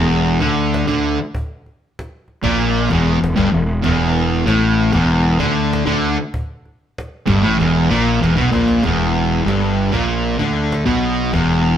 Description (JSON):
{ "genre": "stoner and doom metal", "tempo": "96 BPM", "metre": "4/4", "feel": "straight", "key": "unclear", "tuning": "A4 = 439 Hz", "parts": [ { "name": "fuzz guitar", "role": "riff", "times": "0.0-11.8 s", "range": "E2 to D3", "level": "-15 LUFS", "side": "equal", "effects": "distortion" }, { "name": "fuzz fingered electric bass", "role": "bass", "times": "0.0-11.8 s", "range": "E1 to D2", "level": "-20 LUFS", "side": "equal", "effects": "overdrive" }, { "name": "cajon", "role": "drums", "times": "0.1-11.5 s", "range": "none", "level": "-27 LUFS", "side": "equal", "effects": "none" } ], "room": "wet stone room reverb, RT60 1.0 s", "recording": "band playing live in one room", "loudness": "-14 LUFS", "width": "side -9 dB against mid", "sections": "0.0-8.8 A section; 8.8-11.8 B section", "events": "drum fill 7.6-8.8", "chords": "0.0 N.C.; 8.8 Em" }